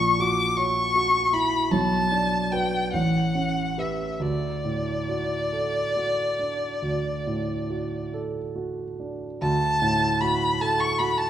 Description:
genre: classical, romantic duo for violin and grand piano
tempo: 45-53 BPM (dotted quarters)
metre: 12/8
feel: rubato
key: D major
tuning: A4 = 437 Hz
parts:
  - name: rich violin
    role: melody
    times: 0.0-11.3 s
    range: D5 to D6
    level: -24 LUFS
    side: left 1 dB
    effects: none
  - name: warm grand piano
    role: accompaniment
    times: 0.0-11.3 s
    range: A1 to C#5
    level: -26 LUFS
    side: right 2 dB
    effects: none
room: moderate scoring stage reverb, RT60 1.9 s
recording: dark, warm production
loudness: -22 LUFS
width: side -10 dB against mid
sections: 0.0-9.4 A section; 9.4-11.3 A section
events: none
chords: 0.0 F#7/A#; 1.7 Bm7; 2.9 A9; 4.2 D

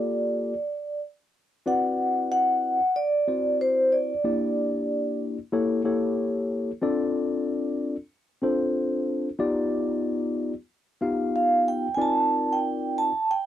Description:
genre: hip hop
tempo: 93 BPM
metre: 4/4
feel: swing 58% on 16ths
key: G minor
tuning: A4 = 440 Hz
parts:
  - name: vibraphone with medium mallets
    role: melody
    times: 0.0-5.2, 11.4-13.5 s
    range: C5 to A5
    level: -23 LUFS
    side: right 1 dB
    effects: none
  - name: mellow tine electric piano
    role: accompaniment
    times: 0.0-13.1 s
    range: Bb3 to F5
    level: -26 LUFS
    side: left 2 dB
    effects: wide subtle chorus
room: light reverb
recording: dry, close 1970s-style studio recording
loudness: -23 LUFS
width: side -11 dB against mid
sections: 0.0-1.7 A section; 1.7-13.5 B section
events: none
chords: 0.0 Gm9; 1.7 Cmaj9#11; 4.2 Em7b5; 5.5 A7b9; 6.8 Dm7; 9.4 G7b13; 12.0 Cm11

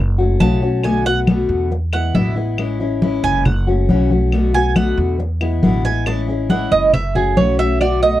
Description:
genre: latin, Cuban son and guajira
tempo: 138 BPM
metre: 4/4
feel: straight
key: unclear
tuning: A4 = 440 Hz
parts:
  - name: upright bass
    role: bass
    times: 0.0-8.2 s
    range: F#1 to E2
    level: -19 LUFS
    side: equal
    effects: none
  - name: picked old ladder-braced acoustic guitar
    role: accompaniment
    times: 0.2-8.2 s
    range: B2 to F#4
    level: -20 LUFS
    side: left 4 dB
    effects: none
  - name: congas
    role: percussion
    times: 0.2-8.2 s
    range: none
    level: -18 LUFS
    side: left 1 dB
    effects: none
  - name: Cuban tres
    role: arpeggios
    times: 0.4-8.2 s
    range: G#4 to A5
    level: -18 LUFS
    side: right 5 dB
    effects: none
  - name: claves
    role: percussion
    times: 0.8-8.0 s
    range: none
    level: -30 LUFS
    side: left 5 dB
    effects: none
room: little or no reverb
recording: dry, close 1970s-style studio recording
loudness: -14 LUFS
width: side -14 dB against mid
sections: 0.0-8.2 A section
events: Cuban tres solo 0.0-8.2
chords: 0.0 F#m7; 0.8 Bm7; 1.7 E7; 2.6 Amaj7; 3.5 F#m7; 4.3 Bm7; 5.2 E7; 6.1 Amaj7; 6.9 F#m7

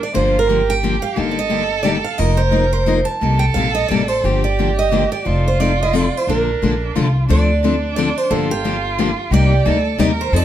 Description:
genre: acoustic string swing (jazz manouche)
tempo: 177 BPM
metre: 3/4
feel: swing 61% on 8ths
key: unclear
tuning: A4 = 440 Hz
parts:
  - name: picked steel-string acoustic guitar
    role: melody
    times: 0.0-10.4 s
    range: G4 to A5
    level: -20 LUFS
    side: right 4 dB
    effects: none
  - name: warm violin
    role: second line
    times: 0.0-10.4 s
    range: D4 to Bb4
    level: -24 LUFS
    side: right 6 dB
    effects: none
  - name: picked steel-string acoustic guitar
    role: accompaniment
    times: 0.1-10.4 s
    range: C3 to Bb4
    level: -20 LUFS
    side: left 5 dB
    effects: none
  - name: upright bass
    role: bass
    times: 0.2-10.4 s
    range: F1 to F2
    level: -19 LUFS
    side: equal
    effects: none
room: moderate studio reverb, RT60 0.7 s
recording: none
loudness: -14 LUFS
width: side -11 dB against mid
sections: 0.0-7.3 A section; 7.3-10.4 B section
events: none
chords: 0.2 Gm7; 1.2 Ebmaj7/G; 2.2 F7sus4; 3.2 Cm7; 4.2 Gm7; 5.3 F7; 6.3 Bbmaj7; 7.3 Dm7; 8.3 Gm7; 9.3 Cm7

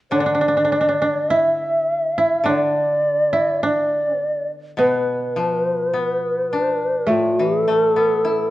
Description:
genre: japanese traditional, Japanese chamber music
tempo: 52 BPM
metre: 4/4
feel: rubato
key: D kumoi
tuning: A4 = 442 Hz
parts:
  - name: mellow long shakuhachi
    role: melody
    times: 0.1-8.5 s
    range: A4 to E5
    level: -18 LUFS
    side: equal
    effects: none
  - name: koto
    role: second line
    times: 0.1-8.5 s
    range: A3 to E4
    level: -22 LUFS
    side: right 2 dB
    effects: none
  - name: koto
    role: accompaniment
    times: 0.1-8.5 s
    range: A2 to E4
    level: -26 LUFS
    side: left 3 dB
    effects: none
room: moderate recital hall reverb, RT60 1.5 s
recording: worn, warbling old tape, cassette tape, warbly pitch drift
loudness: -17 LUFS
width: side -16 dB against mid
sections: 0.1-8.5 A section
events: none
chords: none

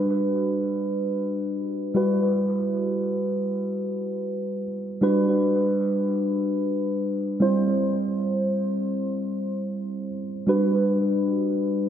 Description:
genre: pop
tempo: free time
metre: none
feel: none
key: G major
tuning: A4 = 445 Hz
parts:
  - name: mellow tine electric piano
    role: solo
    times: 0.0-11.9 s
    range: G3 to C5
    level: -22 LUFS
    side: equal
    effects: wide subtle chorus, tape echo
room: wet plate reverb, RT60 2.9 s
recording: dreamy mix soaked in reverb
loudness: -22 LUFS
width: side -9 dB against mid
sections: 0.0-11.9 A section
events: none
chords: 0.0 Gmaj7; 2.0 Emadd9; 5.0 Gmaj7; 7.4 C; 10.5 Gmaj7

